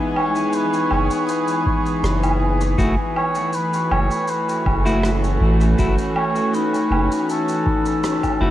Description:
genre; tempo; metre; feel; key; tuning
ambient dub; 80 BPM; 4/4; straight; F# dorian; A4 = 440 Hz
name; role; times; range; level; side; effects
dark studio string section; sustained chords; 0.0-8.5 s; E3 to G#4; -24 LUFS; right 1 dB; cassette tape
vibraphone with medium hard mallets; arpeggios; 0.0-8.5 s; D#4 to D#6; -25 LUFS; left 4 dB; cassette tape, analog delay
bubbling stepped-filter texture; texture; 0.0-8.5 s; G#5; -34 LUFS; left 1 dB; chorus, built-in reverb, cassette tape
trumpet with cup mute; melody; 0.2-8.4 s; A4 to C#5; -25 LUFS; right 1 dB; dub echo
woodblock, shaker and rim click; drums; 0.2-8.4 s; none; -27 LUFS; right 1 dB; cassette tape, dub echo
round analog bass; bass; 0.9-8.5 s; F#1 to A1; -19 LUFS; equal; none
electronic kick drum; drums; 1.7-8.4 s; none; -24 LUFS; equal; cassette tape
clean electric guitar; stabs; 2.8-8.5 s; A3 to F#4; -28 LUFS; left 1 dB; cassette tape, dub echo
room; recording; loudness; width
moderate lush hall reverb, RT60 2.2 s; home recording on cassette; -17 LUFS; side -13 dB against mid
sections
0.0-8.5 A section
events
none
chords
0.0 E; 2.8 F#m7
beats
0.54 1.29 2.04 | 2.79 3.54 4.29 5.04 | 5.79 6.54 7.29 8.04

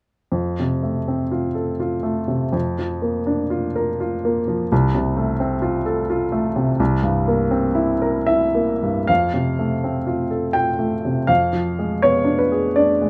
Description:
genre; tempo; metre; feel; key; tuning
classical, romantic character piece for solo piano; 71-88 BPM; 3/4; rubato; F major; A4 = 441 Hz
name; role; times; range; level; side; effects
warm baby grand piano; solo; 0.3-13.1 s; C2 to G5; -20 LUFS; equal; none
room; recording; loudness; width
light reverb; close, detailed microphones; -20 LUFS; mono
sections
0.3-9.1 A section; 9.1-13.1 B section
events
none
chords
0.3 F; 2.5 Bb/F; 4.7 F/C; 6.8 C7; 9.1 F; 11.3 Fdim7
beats
| 0.33 1.08 1.81 | 2.54 3.28 4.00 | 4.71 5.40 6.09 | 6.79 7.52 8.29 | 9.09 9.84 10.56 | 11.29 12.03 12.76

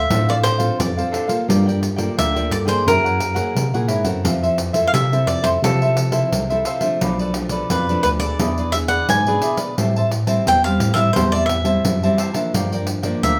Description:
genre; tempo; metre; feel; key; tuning
samba and choro; 87 BPM; 4/4; straight; F major; A4 = 440 Hz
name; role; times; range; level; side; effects
cavaquinho; melody; 0.0-13.4 s; A4 to G#5; -23 LUFS; equal; none
cavaquinho; accompaniment; 0.0-13.4 s; D4 to A5; -26 LUFS; equal; none
nylon-string guitar; accompaniment; 0.0-13.4 s; G2 to A4; -26 LUFS; equal; none
mellow tine electric piano; bass; 0.0-13.4 s; B1 to C3; -24 LUFS; equal; overdrive
pandeiro; percussion; 0.1-13.4 s; none; -27 LUFS; equal; none
room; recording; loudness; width
moderate studio reverb, RT60 0.7 s; none; -19 LUFS; mono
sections
0.0-13.4 A section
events
none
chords
0.0 Dm7; 1.5 Gm9; 2.9 Gb9; 4.3 Fmaj7; 7.0 Bm7b5; 8.4 E7; 9.8 Am7; 12.5 Gm7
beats
0.11 0.80 | 1.49 2.18 2.87 3.56 | 4.25 4.94 5.63 6.32 | 7.01 7.71 8.40 9.09 | 9.78 10.47 11.16 11.85 | 12.54 13.23

